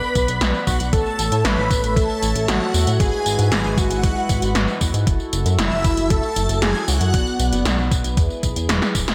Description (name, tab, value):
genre	synthwave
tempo	116 BPM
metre	4/4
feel	straight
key	A major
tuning	A4 = 440 Hz
part	unison lead	melody	0.0-7.7 s	E4 to B4	-27 LUFS	equal	tape echo
part	string machine, violins	second line	0.0-7.6 s	E5 to B5	-30 LUFS	equal	ensemble chorus, slapback echo, tape echo
part	chorused pulse-width pad	sustained chords	0.0-9.1 s	G#3 to F#5	-30 LUFS	equal	sidechain pumping
part	80s electronic pad drums	drums	0.0-9.1 s	hi-hat, snare drum, tambourine	-26 LUFS	equal	none
part	chorused synth bass	bass	0.2-9.1 s	D1 to A2	-24 LUFS	equal	sidechain pumping
part	electronic kick drum	drums	0.2-9.1 s	none	-23 LUFS	equal	overdrive
room	moderate lush hall reverb, RT60 1.6 s, digital ambience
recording	big arena sound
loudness	-19 LUFS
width	mono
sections	0.0-9.1 A section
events	drum fill 8.8-9.1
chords	0.0 Bm; 0.9 A; 3.0 Eadd9/G#; 5.1 F#m7; 7.1 Bm; 8.2 E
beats	0.41 | 0.93 1.45 1.97 2.48 | 3.00 3.52 4.04 4.55 | 5.07 5.59 6.10 6.62 | 7.14 7.66 8.17 8.69